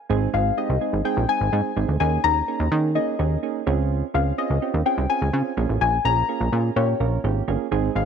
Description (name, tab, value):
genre	dance-pop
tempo	126 BPM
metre	4/4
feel	straight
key	Ab major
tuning	A4 = 439 Hz
part	soft electric-piano-like synth keys	accompaniment	0.1-8.1 s	Ab3 to Bb4	-26 LUFS	right 14 dB	chorus
part	plucky analog bass	bass	0.1-8.1 s	G1 to Eb3	-22 LUFS	equal	none
part	soft round pluck	melody	0.3-8.1 s	Db5 to Bb5	-24 LUFS	left 11 dB	chorus, slapback echo
room	light reverb, digital ambience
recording	1960s-style stereo with parts hard left and right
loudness	-20 LUFS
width	side -7 dB against mid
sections	0.1-8.1 A section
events	none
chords	0.1 Ab; 2.0 Eb7sus4; 3.7 Dbmaj7; 5.6 Bbm7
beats	| 0.10 0.57 1.05 1.52 | 2.00 2.48 2.95 3.43 | 3.91 4.38 4.86 5.33 | 5.81 6.29 6.76 7.24 | 7.72